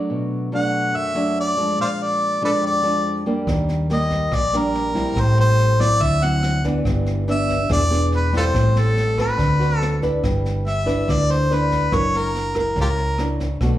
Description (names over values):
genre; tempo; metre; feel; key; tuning
bossa nova; 142 BPM; 4/4; straight; unclear; A4 = 440 Hz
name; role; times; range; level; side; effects
nylon-string guitar; accompaniment; 0.0-13.8 s; F2 to B4; -23 LUFS; equal; slapback echo
warm harmonica; melody; 0.6-13.4 s; F4 to F#5; -21 LUFS; left 1 dB; slapback echo
hollow-body short-scale fingered electric bass; bass; 3.5-13.8 s; E1 to Eb2; -21 LUFS; equal; none
jazz brush drum kit; drums; 3.5-13.7 s; kick drum, rim click, snare drum; -28 LUFS; equal; none
room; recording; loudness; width
light reverb, small room reverb; live gig heard through the venue's PA, club reverb; -17 LUFS; side -13 dB against mid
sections
0.0-10.2 A section; 10.2-13.8 A section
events
none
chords
0.1 Bm7; 1.8 Bb7; 3.5 Ebmaj7; 5.2 Am7; 6.0 D9; 6.9 G6; 7.7 E7; 8.5 Am7; 9.4 D13; 10.2 G6; 11.9 F#7b13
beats
| 0.09 0.51 0.94 1.36 | 1.78 2.21 2.63 3.05 | 3.47 3.90 4.32 4.74 | 5.16 5.59 6.01 6.43 | 6.85 7.28 7.70 8.12 | 8.54 8.97 9.39 9.81 | 10.23 10.66 11.08 11.50 | 11.92 12.35 12.77 13.19 | 13.61